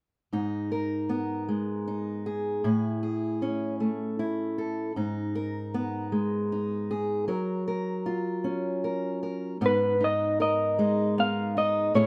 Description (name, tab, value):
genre	acoustic folk-pop ballad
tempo	52 BPM (dotted quarters)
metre	6/8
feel	straight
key	unclear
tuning	A4 = 440 Hz
part	fingerpicked steel-string acoustic guitar	accompaniment	0.3-12.1 s	G#2 to A#4	-30 LUFS	equal	none
part	electric guitar through a small old amp	melody	9.7-12.1 s	B4 to E#5	-26 LUFS	equal	harmonic tremolo
room	light reverb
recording	none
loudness	-29 LUFS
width	mono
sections	0.3-9.6 A section; 9.6-12.1 B section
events	none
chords	0.3 G#madd9; 2.6 Amaj7; 5.0 G#madd9; 7.3 F#maj7; 9.6 G#madd9